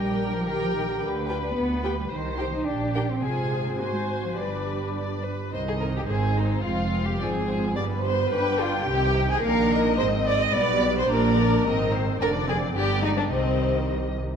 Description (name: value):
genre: quick classical-period movement for string orchestra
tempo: 108 BPM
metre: 2/4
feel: straight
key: C minor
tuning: A4 = 440 Hz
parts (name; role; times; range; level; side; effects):
- muted chamber violin section; melody; 0.0-14.2 s; G4 to G5; -32 LUFS; left 4 dB; none
- muted chamber violin section; second line; 0.0-13.9 s; C4 to Ab5; -26 LUFS; equal; none
- muted chamber viola section; accompaniment; 0.0-14.3 s; D3 to Bb4; -30 LUFS; right 2 dB; none
- muted chamber cello section; bass; 0.0-14.2 s; F2 to Eb4; -28 LUFS; right 1 dB; none
- muted symphonic double bass section; bass; 0.0-14.2 s; F1 to D2; -30 LUFS; right 2 dB; none
room: wet scoring stage reverb, RT60 1.7 s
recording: none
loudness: -22 LUFS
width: side -7 dB against mid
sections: 0.0-5.5 A section; 5.5-14.4 B section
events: none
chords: 0.0 Gm/Bb; 1.0 G7/D; 2.1 Cm; 2.7 Gm/Bb; 3.2 Fm/Ab; 3.8 Ab7; 4.4 G; 5.5 Cm; 6.1 Ab; 6.6 Fm; 7.8 G; 8.3 G7; 8.9 Cm; 10.0 Ab; 10.5 G/B; 11.1 Gm/Bb; 11.6 Ab; 12.2 Dm/F; 12.8 G; 13.3 Cm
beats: 0.46 | 1.01 1.56 | 2.11 2.67 | 3.23 3.79 | 4.37 4.95 | 5.52 6.08 | 6.64 7.20 | 7.76 8.32 | 8.87 9.43 | 9.98 10.53 | 11.09 11.64 | 12.20 12.75 | 13.32 13.89